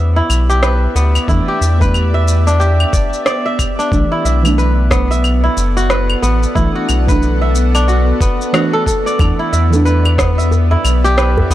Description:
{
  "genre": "organic downtempo",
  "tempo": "91 BPM",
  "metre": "4/4",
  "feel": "swing 60% on 16ths",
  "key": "E minor",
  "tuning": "A4 = 440 Hz",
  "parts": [
    { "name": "deep mellow chord stab", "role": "accompaniment", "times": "0.0-11.5 s", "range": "E3 to D4", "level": "-21 LUFS", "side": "right 3 dB", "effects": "chorus, phaser, cassette tape, sidechain pumping, tape echo" },
    { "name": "bowed-like drone", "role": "sustained chords", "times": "0.0-11.5 s", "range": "B3 to F#5", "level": "-22 LUFS", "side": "equal", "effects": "built-in reverb, sidechain pumping" },
    { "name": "kora", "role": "arpeggios", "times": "0.0-11.5 s", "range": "B3 to E5", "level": "-18 LUFS", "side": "equal", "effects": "tape echo" },
    { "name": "round analog bass", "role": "bass", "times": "0.0-11.5 s", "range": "F#1 to E2", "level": "-13 LUFS", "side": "equal", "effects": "sidechain pumping" },
    { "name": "electronic claves, shaker and rim click", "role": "drums", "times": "0.3-11.5 s", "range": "none", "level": "-20 LUFS", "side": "equal", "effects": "overdrive" },
    { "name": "electronic kick drum", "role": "drums", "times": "1.3-10.3 s", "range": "none", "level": "-16 LUFS", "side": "equal", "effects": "none" },
    { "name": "djembe", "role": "percussion", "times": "9.2-11.5 s", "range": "none", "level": "-21 LUFS", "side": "right 1 dB", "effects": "none" }
  ],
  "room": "little or no reverb",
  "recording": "dry, gritty hardware recording",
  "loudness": "-11 LUFS",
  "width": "side -14 dB against mid",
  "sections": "0.0-11.5 A section",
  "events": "none",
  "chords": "0.0 Em7; 3.9 Bm7; 9.2 Em7",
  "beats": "0.62 | 1.28 1.94 2.60 3.26 | 3.92 4.58 5.24 5.90 | 6.56 7.22 7.88 8.54 | 9.20 9.85 10.51 11.17"
}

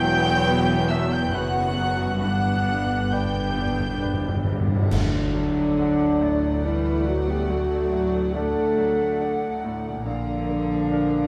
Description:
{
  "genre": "cinematic, emotional film score for orchestra",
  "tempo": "69 BPM",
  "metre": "3/4",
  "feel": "uneven beats, rubato",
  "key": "unclear",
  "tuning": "A4 = 441 Hz",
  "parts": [
    { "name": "warm studio violin section", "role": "melody", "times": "0.0-11.3 s", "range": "F#5 to G6", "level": "-38 LUFS", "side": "equal", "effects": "none" },
    { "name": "mellow silver concert flute", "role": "second line", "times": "0.0-11.3 s", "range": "A4 to G5", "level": "-34 LUFS", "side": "equal", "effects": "none" },
    { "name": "rich studio violin section", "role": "second line", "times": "0.0-11.3 s", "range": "D5 to G5", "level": "-38 LUFS", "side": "equal", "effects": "none" },
    { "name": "warm oboe", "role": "second line", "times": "0.0-4.5 s", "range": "E5 to G5", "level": "-32 LUFS", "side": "equal", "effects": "none" },
    { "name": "bright concert grand piano", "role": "accompaniment", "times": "0.0-11.3 s", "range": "Bb1 to B4", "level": "-34 LUFS", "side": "equal", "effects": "none" },
    { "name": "warm chamber viola section", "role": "accompaniment", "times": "0.0-11.3 s", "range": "F#3 to F#4", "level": "-34 LUFS", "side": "equal", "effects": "none" },
    { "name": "mellow French horn section", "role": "sustained chords", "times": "0.0-11.3 s", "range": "F#3 to B4", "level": "-28 LUFS", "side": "equal", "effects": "none" },
    { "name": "concert harp", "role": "arpeggios", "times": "0.0-11.3 s", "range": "E2 to B4", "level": "-35 LUFS", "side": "equal", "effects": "none" },
    { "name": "rich symphonic cello section", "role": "bass", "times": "0.0-11.3 s", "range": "E2 to A3", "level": "-34 LUFS", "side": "equal", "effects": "none" },
    { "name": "warm symphonic double bass section", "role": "bass", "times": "0.0-11.3 s", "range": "E1 to D2", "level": "-31 LUFS", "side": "equal", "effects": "none" },
    { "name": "cymbal swell, clash cymbals and concert bass drum", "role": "percussion", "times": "2.2-6.6 s", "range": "none", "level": "-34 LUFS", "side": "equal", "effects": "none" },
    { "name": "timpani", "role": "percussion", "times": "2.2-4.9 s", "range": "G2", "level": "-29 LUFS", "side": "equal", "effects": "none" },
    { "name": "warm clarinet", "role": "second line", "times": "4.9-11.3 s", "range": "F3 to D4", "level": "-36 LUFS", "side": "equal", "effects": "none" }
  ],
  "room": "moderate scoring stage reverb, RT60 1.7 s",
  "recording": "none",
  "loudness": "-23 LUFS",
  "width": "mono",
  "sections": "0.0-4.9 A section; 4.9-11.3 B section",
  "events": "timpani fill 2.2-4.9; band accent 4.9-5.8",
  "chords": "0.0 Emadd9; 2.2 G; 4.9 D; 10.1 Bb",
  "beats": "0.48 1.34 | 2.23 3.13 4.02 | 4.92 5.79 6.65 | 7.50 8.35 9.20 | 10.05 10.91"
}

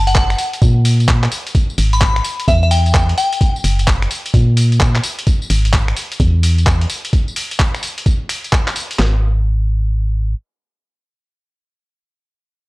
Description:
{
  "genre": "UK garage, two-step garage",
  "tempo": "129 BPM",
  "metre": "4/4",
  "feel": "swing 65% on 16ths",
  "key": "unclear",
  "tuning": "A4 = 444 Hz",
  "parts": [
    { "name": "glassy synth bell", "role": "melody", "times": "0.0-3.4 s", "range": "E5 to B5", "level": "-19 LUFS", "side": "left 2 dB", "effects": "chorus, analog delay" },
    { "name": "organ-like FM bass", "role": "bass", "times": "0.0-10.3 s", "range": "F#1 to A#2", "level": "-14 LUFS", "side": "equal", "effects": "transformer saturation" },
    { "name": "boom bap sampler-style drum kit", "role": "drums", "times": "0.1-9.0 s", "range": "finger snaps, handclaps, hi-hat, tambourine", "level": "-20 LUFS", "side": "equal", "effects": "none" },
    { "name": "boom bap sampler-style drum kit", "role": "drums", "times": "0.2-9.1 s", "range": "handclaps, kick drum, snare drum", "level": "-15 LUFS", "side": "equal", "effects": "none" }
  ],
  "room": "digital ambience",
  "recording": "dry, gritty hardware recording, cassette tape",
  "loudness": "-13 LUFS",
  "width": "side -21 dB against mid",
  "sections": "0.0-9.0 A section; 9.0-12.7 B section",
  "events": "drop 0.0-9.0",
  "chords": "0.4 N.C.; 1.5 G#m; 2.2 Em; 3.4 N.C.",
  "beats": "0.15 0.62 1.08 | 1.55 2.01 2.48 2.94 | 3.41 3.87 4.34 4.80 | 5.27 5.73 6.20 6.66 | 7.13 7.59 8.06 8.53 | 8.99 9.46 9.92"
}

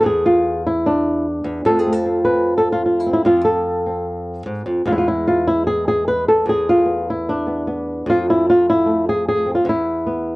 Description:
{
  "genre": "flamenco",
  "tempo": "150 BPM",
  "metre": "4/4",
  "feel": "straight",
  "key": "unclear",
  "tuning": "A4 = 441 Hz",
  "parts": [
    { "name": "flamenco guitar", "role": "solo", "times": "0.0-10.4 s", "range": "E2 to B4", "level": "-16 LUFS", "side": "equal", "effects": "none" }
  ],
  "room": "moderate small room reverb, RT60 0.5 s",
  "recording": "worn, warbling old tape, cassette tape, warbly pitch drift",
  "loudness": "-15 LUFS",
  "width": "side -21 dB against mid",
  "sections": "0.0-10.4 A section",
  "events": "none",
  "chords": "0.0 N.C.; 1.6 F; 4.9 E; 8.1 F; 9.7 E5",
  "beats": "| 0.04 0.44 0.84 1.25 | 1.65 2.05 2.45 2.85 | 3.25 3.65 4.06 4.46 | 4.86 5.26 5.66 6.06 | 6.46 6.86 7.26 7.66 | 8.06 8.46 8.86 9.26 | 9.66 10.06"
}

